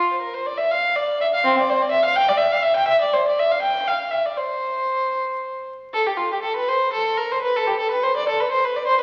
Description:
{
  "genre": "classical, baroque-style suite movement for unaccompanied violin",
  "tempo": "75-85 BPM (dotted quarters)",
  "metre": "6/8",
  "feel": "rubato",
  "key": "C major",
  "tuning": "A4 = 440 Hz",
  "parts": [
    { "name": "warm violin", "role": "solo", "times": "0.0-9.0 s", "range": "C4 to G5", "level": "-21 LUFS", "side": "equal", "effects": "none" }
  ],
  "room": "wet recital hall reverb, RT60 1.5 s",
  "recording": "very old 78 rpm record, vinyl crackle",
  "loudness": "-21 LUFS",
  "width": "mono",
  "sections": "0.0-5.9 A section; 5.9-9.0 B section",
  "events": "none",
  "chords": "none"
}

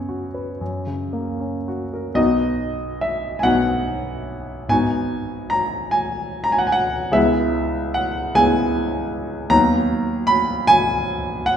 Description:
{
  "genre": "classical, romantic nocturne for solo piano",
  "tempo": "36-52 BPM (dotted quarters)",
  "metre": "6/8",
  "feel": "rubato",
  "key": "B major",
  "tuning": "A4 = 440 Hz",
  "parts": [
    { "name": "clear grand piano", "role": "solo", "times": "0.0-11.6 s", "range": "G#1 to B5", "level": "-18 LUFS", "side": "equal", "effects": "none" }
  ],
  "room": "wet recital hall reverb, RT60 1.6 s",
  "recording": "heard from further back in the room",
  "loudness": "-18 LUFS",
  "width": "side -8 dB against mid",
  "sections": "0.0-2.2 A section; 2.2-11.6 B section",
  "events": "none",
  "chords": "0.0 F#sus4; 0.6 F#; 2.2 B; 4.7 G#m7; 7.2 C#m7; 9.5 B/D#"
}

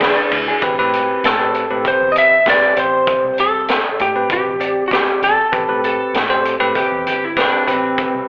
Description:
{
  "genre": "straight-eighth soul blues",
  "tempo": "98 BPM",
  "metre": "4/4",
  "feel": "swing 54% on 16ths",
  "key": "A minor",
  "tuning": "A4 = 440 Hz",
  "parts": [
    { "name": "electric slide guitar", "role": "second line", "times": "0.0-0.6, 5.8-8.3 s", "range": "C4 to D5", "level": "-24 LUFS", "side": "equal", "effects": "slapback echo, tape echo" },
    { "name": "bell-like tine electric piano", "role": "accompaniment", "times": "0.0-8.3 s", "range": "C4 to D5", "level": "-22 LUFS", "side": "equal", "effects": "none" },
    { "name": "mellow electric guitar", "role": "stabs", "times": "0.0-0.6 s", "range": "B3 to G#4", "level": "-26 LUFS", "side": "equal", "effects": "none" },
    { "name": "crunchy breakbeat drum kit", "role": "drums", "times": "0.0-8.1 s", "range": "hi-hat, kick drum, ride cymbal, snare drum", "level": "-22 LUFS", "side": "equal", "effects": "none" },
    { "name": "vintage muted fingered electric bass", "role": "bass", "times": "0.3-8.3 s", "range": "G1 to A2", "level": "-37 LUFS", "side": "equal", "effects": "none" },
    { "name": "lightly driven lead guitar", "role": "melody", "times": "1.3-5.8 s", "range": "F#4 to E5", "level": "-17 LUFS", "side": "equal", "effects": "slapback echo" }
  ],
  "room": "light reverb",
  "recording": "live gig heard through the venue's PA, club reverb, telephone sound",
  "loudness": "-16 LUFS",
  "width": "mono",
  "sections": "0.6-8.3 A section",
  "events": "none",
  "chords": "0.0 E7 (rootless); 0.6 Am7"
}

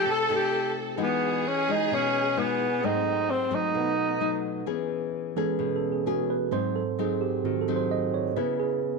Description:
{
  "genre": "bossa nova",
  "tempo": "130 BPM",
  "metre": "4/4",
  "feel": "straight",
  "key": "E major from 4.7 s",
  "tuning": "A4 = 439 Hz",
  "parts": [
    { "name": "breathy tenor saxophone", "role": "melody", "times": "0.0-4.5 s", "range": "B3 to A4", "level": "-26 LUFS", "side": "right 1 dB", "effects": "none" },
    { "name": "warm studio violin section", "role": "second line", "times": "0.0-4.4 s", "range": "B3 to A4", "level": "-32 LUFS", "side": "right 1 dB", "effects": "none" },
    { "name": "nylon-string guitar", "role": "accompaniment", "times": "0.0-9.0 s", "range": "G#2 to G#4", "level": "-30 LUFS", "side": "left 12 dB", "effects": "none" },
    { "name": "tine electric piano", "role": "accompaniment", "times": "0.0-9.0 s", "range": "G#2 to G#5", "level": "-30 LUFS", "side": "right 13 dB", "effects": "none" }
  ],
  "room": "moderate plate reverb, RT60 3.0 s",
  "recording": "1960s-style stereo with parts hard left and right",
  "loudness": "-24 LUFS",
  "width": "side -3 dB against mid",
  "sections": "0.0-4.7 A section; 4.7-9.0 B section",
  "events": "tine electric piano solo 4.7-9.0",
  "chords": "0.0 F9; 1.0 Emaj9; 2.8 G#7b9; 3.7 B7; 4.7 E6; 6.5 G#7; 8.4 C#m7"
}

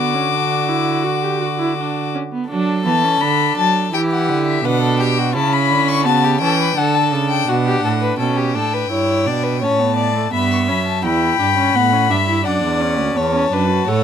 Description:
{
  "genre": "classical, baroque-style fugue for string quartet",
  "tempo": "84 BPM",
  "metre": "4/4",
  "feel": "straight",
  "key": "D major",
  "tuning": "A4 = 441 Hz",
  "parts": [
    { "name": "rich violin", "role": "melody", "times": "0.0-14.0 s", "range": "E5 to D6", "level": "-20 LUFS", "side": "left 9 dB", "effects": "none" },
    { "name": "rich violin", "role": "second line", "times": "0.0-14.0 s", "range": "E4 to G5", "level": "-21 LUFS", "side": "left 4 dB", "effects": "none" },
    { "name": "warm viola", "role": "accompaniment", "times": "0.0-14.0 s", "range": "A3 to A4", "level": "-21 LUFS", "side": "right 3 dB", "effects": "none" },
    { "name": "rich cello", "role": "bass", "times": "0.0-14.0 s", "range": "D2 to F#3", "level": "-20 LUFS", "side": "right 5 dB", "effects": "none" }
  ],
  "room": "little or no reverb",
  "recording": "close, detailed microphones",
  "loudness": "-15 LUFS",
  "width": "side -8 dB against mid",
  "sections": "0.0-2.5 A section; 2.5-8.2 B section; 8.2-14.0 A section",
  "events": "none",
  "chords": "0.0 D; 3.9 Em7; 5.4 A7/C#; 6.8 D; 8.2 G; 9.6 F#m/A; 11.0 Em; 12.5 D"
}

